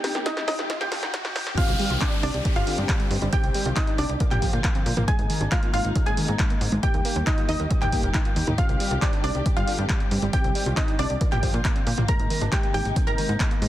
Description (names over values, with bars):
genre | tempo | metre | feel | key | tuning
uplifting trance | 137 BPM | 4/4 | straight | C minor | A4 = 443 Hz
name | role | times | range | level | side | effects
wide unison pluck | melody | 0.0-13.3 s | D4 to Bb5 | -30 LUFS | equal | vintage 12-bit sampler grit, sidechain pumping, tape echo
bright baby grand piano | second line | 0.0-13.3 s | D6 to Bb6 | -35 LUFS | right 3 dB | sidechain pumping, tape echo
dark studio string section | sustained chords | 0.0-13.7 s | C3 to G4 | -34 LUFS | left 3 dB | sidechain pumping
wide unison pluck | arpeggios | 0.0-13.7 s | D3 to Eb5 | -33 LUFS | right 2 dB | sidechain pumping, tape echo
punchy analog drum machine | drums | 0.0-13.7 s | crash cymbal, handclaps, hi-hat, snare drum, toms | -30 LUFS | equal | none
riser and downlifter | sound effects | 0.0-5.1 s | none | -34 LUFS | equal | none
tight sequencer bass | bass | 0.2-13.7 s | Eb1 to Bb2 | -27 LUFS | equal | sidechain pumping, high-pass filter
electronic kick drum | drums | 0.3-13.5 s | none | -24 LUFS | equal | high-pass filter on kick
room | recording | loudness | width
little or no reverb | dense, heavily limited modern master, high-pass filter | -21 LUFS | side -13 dB against mid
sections
0.0-1.6 A section; 1.6-13.7 B section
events
build-up 0.0-1.6; drum fill 0.0-1.6; riser 0.0-1.6; filter sweep on synth pluck 0.0-1.6; filter sweep on grand piano 0.0-1.6; filter sweep 0.0-1.6; drop 1.6-13.7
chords
0.0 Eb; 1.6 Cm; 2.5 Gsus4; 3.3 Cm; 4.2 Bb; 5.1 Abadd9; 6.8 Eb; 8.6 Cm; 9.5 Gsus4; 10.3 Cm; 11.2 Bb; 12.1 Abadd9